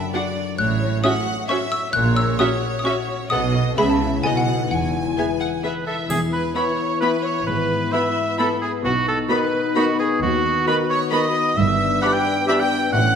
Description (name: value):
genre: cinematic, playful, whimsical film cue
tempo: 132 BPM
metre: 3/4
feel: straight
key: E major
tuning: A4 = 439 Hz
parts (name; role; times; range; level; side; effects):
- xylophone with wooden mallets; melody; 0.0-5.8 s; E5 to F#6; -25 LUFS; left 1 dB; none
- rich chamber violin section; second line; 0.0-13.2 s; F#4 to G#5; -29 LUFS; left 2 dB; none
- concert harp; arpeggios; 0.0-13.2 s; F#2 to B5; -26 LUFS; left 7 dB; none
- warm studio violin section; melody; 0.1-12.6 s; D#5 to B5; -29 LUFS; left 2 dB; none
- rich chamber viola section; accompaniment; 0.1-12.6 s; G#3 to A4; -27 LUFS; right 2 dB; none
- rich studio double bass section; bass; 0.6-13.2 s; E1 to D#2; -26 LUFS; right 5 dB; none
- warm chamber cello section; bass; 0.6-13.2 s; D#2 to C#3; -27 LUFS; right 4 dB; none
- clear oboe; second line; 5.6-13.2 s; F#4 to G5; -22 LUFS; right 2 dB; none
- dark French horn section; sustained chords; 6.1-13.2 s; A3 to F#4; -26 LUFS; left 4 dB; none
- triangle; percussion; 6.1-7.0 s; none; -37 LUFS; left 1 dB; none
- mellow hollow small flute group; second line; 6.6-12.6 s; B5 to D6; -30 LUFS; right 1 dB; none
- warm clarinet; second line; 6.6-12.6 s; E4 to G4; -31 LUFS; left 2 dB; none
- mellow bassoon; accompaniment; 6.6-12.6 s; D#3 to E3; -29 LUFS; right 2 dB; none
room: wet scoring stage reverb, RT60 1.6 s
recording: none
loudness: -18 LUFS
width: side -7 dB against mid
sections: 0.0-6.1 A section; 6.1-13.2 B section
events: none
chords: 0.0 D/F#; 0.6 F#m7/A; 1.9 F#7/A#; 3.3 B7; 3.8 C#m; 4.2 B7; 4.7 E; 6.1 E5; 7.5 E/G#; 8.8 B; 10.2 B/D#; 11.6 Em7/G